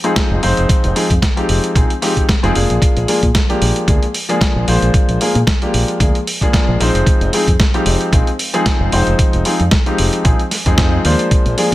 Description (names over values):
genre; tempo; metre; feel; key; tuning
nu-disco, nu disco; 113 BPM; 4/4; swing 55% on 16ths; F dorian; A4 = 440 Hz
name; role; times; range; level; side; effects
warm grand piano; accompaniment; 0.0-11.7 s; F3 to C5; -17 LUFS; left 1 dB; sidechain pumping, tape echo
dusty soul sampler-style drum kit; drums; 0.0-11.7 s; hi-hat, snare drum; -20 LUFS; equal; studio reverb
electronic kick drum; drums; 0.2-11.7 s; none; -14 LUFS; equal; studio reverb
fingered electric bass with an envelope filter; bass; 0.3-11.7 s; F1 to Bb2; -16 LUFS; equal; sidechain pumping
room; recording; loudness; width
digital ambience; none; -12 LUFS; side -16 dB against mid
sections
0.0-11.7 A section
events
none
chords
0.0 Fm7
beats
0.17 | 0.70 1.23 1.76 2.29 | 2.82 3.35 3.88 4.41 | 4.94 5.47 6.01 6.54 | 7.07 7.60 8.13 8.66 | 9.19 9.72 10.25 10.78 | 11.31